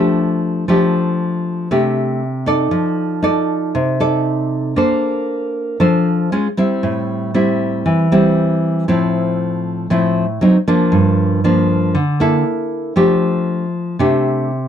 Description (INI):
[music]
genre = bossa nova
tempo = 117 BPM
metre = 4/4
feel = straight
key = F major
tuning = A4 = 439 Hz
[part]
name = nylon-string guitar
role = solo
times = 0.0-14.7 s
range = G2 to D5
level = -14 LUFS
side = equal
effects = none
[sound]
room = light reverb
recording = dark, warm production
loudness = -14 LUFS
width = side -9 dB against mid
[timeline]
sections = 0.7-14.7 A section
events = none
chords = 0.0 F69; 2.7 F6; 4.8 Bbmaj9; 6.3 Dbmaj7#11; 6.8 Am7; 8.9 Fmaj7/A; 10.4 D7b9; 10.9 Gm7; 12.5 A5; 13.0 F69